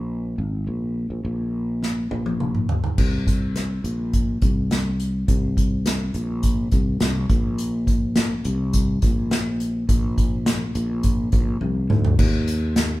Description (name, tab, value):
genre	piano-driven pop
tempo	104 BPM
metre	4/4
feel	straight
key	unclear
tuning	A4 = 439 Hz
part	sustaining fretless electric bass	bass	0.0-13.0 s	Ab1 to Eb2	-23 LUFS	equal	none
part	unplugged drum kit	drums	1.8-12.9 s	crash cymbal, hi-hat, kick drum, snare drum, toms	-21 LUFS	equal	none
room	moderate large studio reverb, RT60 1.3 s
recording	band playing live in one room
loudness	-20 LUFS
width	side -17 dB against mid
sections	0.0-3.0 A section; 3.0-12.2 B section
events	drum fill 1.8-3.0, 11.6-12.2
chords	none